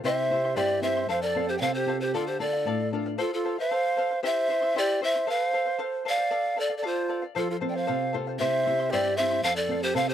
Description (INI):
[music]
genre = andean folk, Andean ensemble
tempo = 115 BPM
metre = 2/4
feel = straight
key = unclear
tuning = A4 = 440 Hz
[part]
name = breathy large quena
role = second line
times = 0.0-10.1 s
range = F4 to D5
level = -30 LUFS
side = right 6 dB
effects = none
[part]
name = charango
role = accompaniment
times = 0.0-10.1 s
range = E4 to C6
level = -33 LUFS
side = left 6 dB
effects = none
[part]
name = nylon-string guitar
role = accompaniment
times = 0.0-3.2, 7.4-10.1 s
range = F2 to A4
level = -32 LUFS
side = equal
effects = none
[part]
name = breathy polished pan flute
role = melody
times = 0.1-10.1 s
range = A4 to G5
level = -26 LUFS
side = left 1 dB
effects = none
[sound]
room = little or no reverb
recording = dry, close 1970s-style studio recording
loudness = -24 LUFS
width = side -10 dB against mid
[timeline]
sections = 0.0-3.2 A section; 3.2-10.1 A section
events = none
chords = 0.0 C; 1.1 F; 2.1 Dm; 3.2 F; 4.2 C; 5.3 F; 6.3 Dm; 7.4 F; 8.4 C; 9.4 F